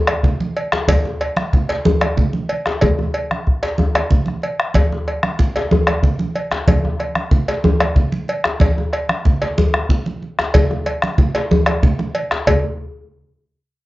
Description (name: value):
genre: west african traditional, West African drum ensemble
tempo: 124 BPM (dotted quarters)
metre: 12/8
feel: straight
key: none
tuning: none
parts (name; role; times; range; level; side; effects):
- bombo; percussion; 0.1-12.6 s; none; -17 LUFS; equal; none
- cowbell; percussion; 0.1-12.6 s; none; -22 LUFS; right 1 dB; none
- djembe; percussion; 0.1-12.6 s; none; -20 LUFS; left 2 dB; none
- congas; percussion; 0.2-12.6 s; none; -21 LUFS; right 2 dB; none
room: moderate studio reverb, RT60 0.5 s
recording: cassette tape, nothing above 7.6 kHz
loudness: -15 LUFS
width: side -18 dB against mid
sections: 0.0-12.5 A section; 12.5-13.9 B section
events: none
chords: none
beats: 0.40 | 0.89 1.37 1.85 2.34 | 2.82 3.30 3.79 4.27 | 4.75 5.24 5.72 6.20 | 6.68 7.17 7.65 8.13 | 8.62 9.10 9.58 10.06 | 10.54 11.03 11.51 11.99 | 12.47